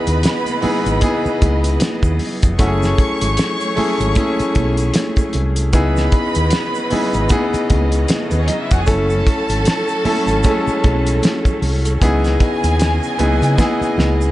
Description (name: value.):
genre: lush 1970s-style soul.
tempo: 76 BPM.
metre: 4/4.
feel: swing 58% on 16ths.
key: F# dorian.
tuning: A4 = 440 Hz.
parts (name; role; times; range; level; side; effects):
warm studio violin section; second line; 0.0-14.3 s; A3 to C#6; -24 LUFS; right 1 dB; none.
clear concert grand piano; accompaniment; 0.0-14.3 s; G#3 to A4; -19 LUFS; left 1 dB; none.
warm studio string section; sustained chords; 0.0-14.3 s; C#3 to D#5; -28 LUFS; equal; none.
overdriven fingered electric bass; bass; 0.1-14.3 s; E#1 to C#3; -18 LUFS; equal; none.
cloth-damped thuddy drum kit; drums; 0.1-14.2 s; hi-hat, kick drum, snare drum; -18 LUFS; equal; none.
egg shaker; percussion; 0.1-14.3 s; none; -38 LUFS; right 7 dB; none.
congas; percussion; 0.2-14.2 s; none; -28 LUFS; right 5 dB; none.
room: studio ambience.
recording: nothing above 10.7 kHz.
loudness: -14 LUFS.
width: side -15 dB against mid.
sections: 0.0-14.3 A section.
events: drum fill 13.6-14.3.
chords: 0.0 C#m9; 2.6 F#m9; 5.7 C#m9; 8.9 F#m9; 12.0 C#m9.